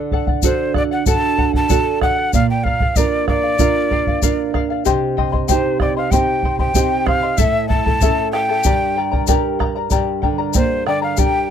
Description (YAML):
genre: andean folk, Andean ensemble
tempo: 95 BPM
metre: 4/4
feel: straight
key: unclear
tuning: A4 = 440 Hz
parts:
  - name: charango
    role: accompaniment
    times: 0.0-11.5 s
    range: E4 to C6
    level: -22 LUFS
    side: left 16 dB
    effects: none
  - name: nylon-string guitar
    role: accompaniment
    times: 0.0-11.5 s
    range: G2 to Bb4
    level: -21 LUFS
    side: right 11 dB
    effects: none
  - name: bombo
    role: percussion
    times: 0.1-11.3 s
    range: none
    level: -19 LUFS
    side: equal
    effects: none
  - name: breathy quena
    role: melody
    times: 0.4-11.5 s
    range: C5 to A5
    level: -19 LUFS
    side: left 1 dB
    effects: none
  - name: egg shaker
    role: percussion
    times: 0.4-11.3 s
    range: none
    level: -25 LUFS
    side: left 29 dB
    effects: none
room: little or no reverb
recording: dry, close 1970s-style studio recording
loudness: -15 LUFS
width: side -8 dB against mid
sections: 0.0-9.9 A section; 9.9-11.5 B section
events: none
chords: 0.0 D; 2.3 Bb; 4.9 Cm; 7.4 A; 8.6 Gm